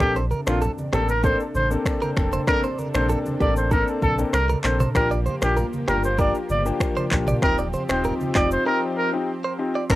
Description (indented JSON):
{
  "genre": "afrobeats",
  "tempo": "97 BPM",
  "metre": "4/4",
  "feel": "straight",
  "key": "Bb major",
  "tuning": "A4 = 445 Hz",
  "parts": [
    { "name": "warm trumpet", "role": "melody", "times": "0.0-10.0 s", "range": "F4 to D5", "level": "-24 LUFS", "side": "equal", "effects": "cassette tape" },
    { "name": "clear grand piano", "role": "accompaniment", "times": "0.0-10.0 s", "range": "Bb3 to A4", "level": "-26 LUFS", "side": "left 3 dB", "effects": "cassette tape" },
    { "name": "lush unison pad", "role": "sustained chords", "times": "0.0-10.0 s", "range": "C3 to A4", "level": "-32 LUFS", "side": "equal", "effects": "chorus, cassette tape" },
    { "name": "sub bass with octave", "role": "bass", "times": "0.0-10.0 s", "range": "Eb1 to C2", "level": "-25 LUFS", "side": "equal", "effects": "none" },
    { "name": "afro-pop drum kit", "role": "drums", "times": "0.0-10.0 s", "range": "crash cymbal, finger snaps, handclaps, kick drum, rim click, shaker, toms", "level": "-24 LUFS", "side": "equal", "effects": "none" },
    { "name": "congas", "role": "percussion", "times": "0.0-8.5 s", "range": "none", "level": "-32 LUFS", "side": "right 1 dB", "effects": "none" },
    { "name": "direct-recorded clean electric guitar", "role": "riff", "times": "0.2-9.8 s", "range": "G4 to D5", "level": "-29 LUFS", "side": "right 4 dB", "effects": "harmonic tremolo, cassette tape" }
  ],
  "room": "light reverb",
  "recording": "home recording on cassette",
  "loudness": "-20 LUFS",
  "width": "side -16 dB against mid",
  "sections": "0.0-9.9 A section",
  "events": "break 8.7-9.9",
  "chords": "0.0 Bbmaj9; 4.9 Gm7; 7.4 Eb69",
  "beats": "| 0.00 0.62 1.24 1.86 | 2.48 3.09 3.71 4.33 | 4.95 5.57 6.19 6.80 | 7.42 8.04 8.66 9.28 | 9.90"
}